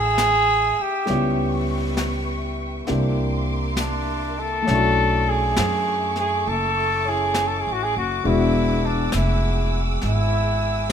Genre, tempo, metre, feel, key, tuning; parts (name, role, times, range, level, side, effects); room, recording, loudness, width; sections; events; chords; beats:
jazz ballad; 67 BPM; 4/4; swing 67% on 8ths; A4 = 440 Hz
mellow trumpet; melody; 0.0-10.9 s; D4 to A4; -22 LUFS; right 1 dB
warm grand piano; accompaniment; 0.0-10.9 s; G3 to F#5; -26 LUFS; left 2 dB
warm studio string section; sustained chords; 0.0-10.9 s; A3 to E6; -30 LUFS; right 1 dB
upright bass; bass; 0.0-10.9 s; E1 to F#2; -24 LUFS; equal
jazz brush drum kit; drums; 0.2-10.9 s; brushed snare drum, hi-hat, snare drum; -29 LUFS; left 1 dB
light reverb; minimal, uncompressed stereo recording; -19 LUFS; side -8 dB against mid
0.0-10.9 A section
0.0 Dmaj9; 1.1 C#m7b5; 2.9 C9; 4.7 Bm11; 8.2 E9
0.18 | 1.07 1.97 2.87 3.77 | 4.67 5.57 6.46 7.35 | 8.24 9.13 10.02 10.90